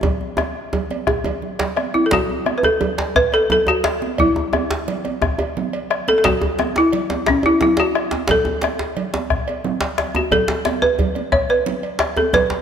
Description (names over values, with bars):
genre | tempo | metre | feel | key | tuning
west african traditional, West African drum ensemble | 117 BPM (dotted quarters) | 12/8 | straight | A major pentatonic | A4 = 440 Hz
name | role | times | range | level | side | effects
bombo | percussion | 0.0-12.5 s | none | -25 LUFS | left 4 dB | none
congas | percussion | 0.0-12.5 s | none | -27 LUFS | right 6 dB | none
cowbell | percussion | 0.0-12.5 s | none | -29 LUFS | right 4 dB | none
djembe | percussion | 0.0-12.6 s | none | -30 LUFS | left 5 dB | none
djembe | percussion | 0.0-12.6 s | none | -24 LUFS | right 1 dB | none
balafon | melody | 1.9-12.6 s | C#4 to C#5 | -17 LUFS | equal | none
room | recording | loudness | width
moderate concert hall reverb, RT60 2.2 s | none | -16 LUFS | side -8 dB against mid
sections
0.0-2.1 A section; 2.1-12.6 B section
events
speeding up 0.0-12.6; drum fill 0.0-2.1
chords
none